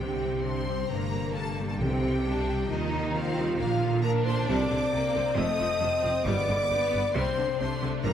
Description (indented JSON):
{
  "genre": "cinematic, heroic adventure film score",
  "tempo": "135 BPM",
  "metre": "4/4",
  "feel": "straight",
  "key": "C dorian",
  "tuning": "A4 = 440 Hz",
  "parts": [
    { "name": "rich symphonic violin section", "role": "melody", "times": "0.0-8.1 s", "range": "Eb5 to Eb6", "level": "-37 LUFS", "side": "left 1 dB", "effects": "none" },
    { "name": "warm symphonic violin section", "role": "second line", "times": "0.0-8.1 s", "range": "A3 to Eb4", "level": "-36 LUFS", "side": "left 2 dB", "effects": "none" },
    { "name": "warm studio viola section", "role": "accompaniment", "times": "0.0-8.1 s", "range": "C3 to F4", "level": "-36 LUFS", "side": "right 2 dB", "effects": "none" },
    { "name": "mellow French horn section", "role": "sustained chords", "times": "0.0-8.1 s", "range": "Eb4 to Eb5", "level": "-29 LUFS", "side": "left 2 dB", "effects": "none" },
    { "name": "concert harp", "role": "arpeggios", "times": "0.0-8.1 s", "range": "F2 to C5", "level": "-36 LUFS", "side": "left 8 dB", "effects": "none" },
    { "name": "rich studio cello section", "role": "bass", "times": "0.0-8.1 s", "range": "F2 to Eb3", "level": "-34 LUFS", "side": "right 3 dB", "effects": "none" },
    { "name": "rich symphonic double bass section", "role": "bass", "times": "0.0-8.1 s", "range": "F1 to Eb2", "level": "-32 LUFS", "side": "right 4 dB", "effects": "none" },
    { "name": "timpani", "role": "percussion", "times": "1.8-8.1 s", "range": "G2 to C3", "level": "-36 LUFS", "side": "equal", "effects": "none" }
  ],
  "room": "wet scoring stage reverb, RT60 2.0 s",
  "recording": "none",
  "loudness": "-25 LUFS",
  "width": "side -9 dB against mid",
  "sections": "0.0-8.1 A section",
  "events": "none",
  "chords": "0.0 Csus2; 0.9 Gmadd9; 1.8 Csus2; 2.7 Ebadd9; 3.6 Bb; 4.5 Csus2; 5.4 F; 6.3 G; 7.2 Csus2"
}